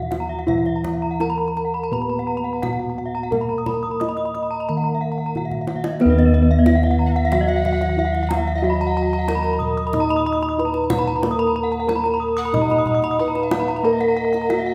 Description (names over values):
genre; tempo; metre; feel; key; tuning
Balinese gamelan; 82-92 BPM; 4/4; straight; Eb pelog; A4 = 440 Hz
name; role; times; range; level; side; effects
gamelan-type bronze metallophone; melody; 0.0-14.7 s; Cb4-20c to Eb5; -25 LUFS; equal; none
gamelan-type bronze metallophone; accompaniment; 0.0-14.7 s; Eb3 to Eb4; -30 LUFS; equal; none
gamelan-type bronze metallophone; arpeggios; 0.0-14.6 s; Cb5-20c to Eb6; -29 LUFS; equal; none
gamelan-type bossed gongs; bass; 0.0-14.7 s; Eb2 to Cb5-20c; -26 LUFS; equal; none
kendang; percussion; 0.1-14.7 s; none; -31 LUFS; equal; none
gamelan-type bronze metallophone; arpeggios; 0.2-14.7 s; Cb5-20c to Eb6; -30 LUFS; equal; none
breathy mellow soprano recorder; second line; 7.1-14.7 s; Eb5 to Gb5-26c; -33 LUFS; equal; none
room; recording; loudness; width
wet scoring stage reverb, RT60 1.6 s; none; -20 LUFS; mono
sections
0.0-6.0 A section; 6.0-14.7 B section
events
drum fill 5.3-6.0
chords
none